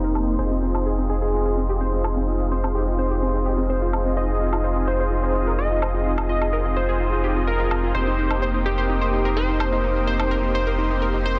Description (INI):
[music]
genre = progressive house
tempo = 127 BPM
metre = 4/4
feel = straight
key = F minor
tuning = A4 = 440 Hz
[part]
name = plucky unison lead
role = melody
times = 0.0-11.4 s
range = Eb4 to Eb5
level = -30 LUFS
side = equal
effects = delay
[part]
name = lush unison pad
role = sustained chords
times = 0.0-11.4 s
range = Ab4 to Eb6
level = -34 LUFS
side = equal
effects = chorus, phaser
[part]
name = analog pluck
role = arpeggios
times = 0.0-11.3 s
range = Bb3 to C5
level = -31 LUFS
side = equal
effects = chorus, delay
[part]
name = soft supersaw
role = stabs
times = 0.0-11.4 s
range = Bb3 to Eb5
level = -29 LUFS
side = equal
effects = low-pass filter
[part]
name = saturated sub bass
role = bass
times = 0.0-11.4 s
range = F1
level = -26 LUFS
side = equal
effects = tube saturation
[part]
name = woodblock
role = drums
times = 0.2-10.3 s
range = none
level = -33 LUFS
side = equal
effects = overdrive, small room ambience
[sound]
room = light reverb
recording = dense, heavily limited modern master, low-pass filter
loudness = -22 LUFS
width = mono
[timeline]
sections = 0.0-11.4 A section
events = filter sweep on drum 0.0-11.4; filter sweep on synth pluck 0.0-11.4; filter sweep 0.0-11.4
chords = 0.4 Fm7; 7.9 Eb6/F